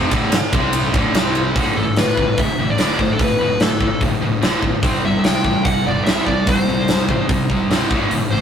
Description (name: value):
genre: hard rock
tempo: 146 BPM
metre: 4/4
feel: straight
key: unclear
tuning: A4 = 438 Hz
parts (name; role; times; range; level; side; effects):
- scooped high-gain guitar; riff; 0.0-8.4 s; D2 to C4; -19 LUFS; equal; distortion
- fuzz fingered electric bass; bass; 0.0-8.4 s; D1 to D2; -26 LUFS; equal; overdrive
- huge arena drum kit; drums; 0.1-8.2 s; hi-hat, kick drum, ride cymbal, snare drum; -18 LUFS; equal; none
- smooth overdriven lead guitar; melody; 1.8-8.4 s; A4 to G5; -21 LUFS; left 2 dB; none
room: moderate small room reverb, RT60 0.5 s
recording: rough rehearsal-room recording, tube saturation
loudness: -15 LUFS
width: side -8 dB against mid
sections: 0.0-1.6 A section; 1.6-8.4 B section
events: none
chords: 0.0 D5; 0.5 C5; 0.9 D5; 1.1 C5; 1.6 D5; 4.8 C5; 7.9 D5